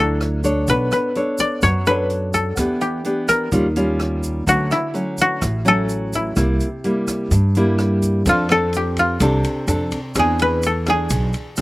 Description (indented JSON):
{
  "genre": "bossa nova",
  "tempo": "127 BPM",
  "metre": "4/4",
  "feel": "straight",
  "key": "F major from 8.3 s",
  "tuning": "A4 = 441 Hz",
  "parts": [
    { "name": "koto", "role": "melody", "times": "0.0-11.6 s", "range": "E4 to D5", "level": "-19 LUFS", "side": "left 1 dB", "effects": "none" },
    { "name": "nylon-string guitar", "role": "accompaniment", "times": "0.0-11.6 s", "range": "G2 to C#5", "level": "-21 LUFS", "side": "equal", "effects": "none" },
    { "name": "upright bass", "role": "bass", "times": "0.0-11.6 s", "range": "A1 to G2", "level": "-21 LUFS", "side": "equal", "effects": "none" },
    { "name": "open jazz drum kit", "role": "drums", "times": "0.2-11.6 s", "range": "hi-hat, kick drum, ride cymbal, rim click", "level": "-29 LUFS", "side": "equal", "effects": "none" },
    { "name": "tube shaker", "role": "percussion", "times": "0.4-11.6 s", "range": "none", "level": "-32 LUFS", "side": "right 3 dB", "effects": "none" }
  ],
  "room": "little or no reverb",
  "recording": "recorded outdoors, with no room sound",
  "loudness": "-16 LUFS",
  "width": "side -19 dB against mid",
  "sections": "0.0-8.3 A section; 8.3-11.6 B section",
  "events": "koto solo 8.3-11.6",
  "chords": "0.0 F#m7b13; 0.7 Bm9; 2.6 Em7; 3.5 Eb9; 4.5 Dmaj7; 6.4 C7; 8.3 F6; 10.2 E7b13"
}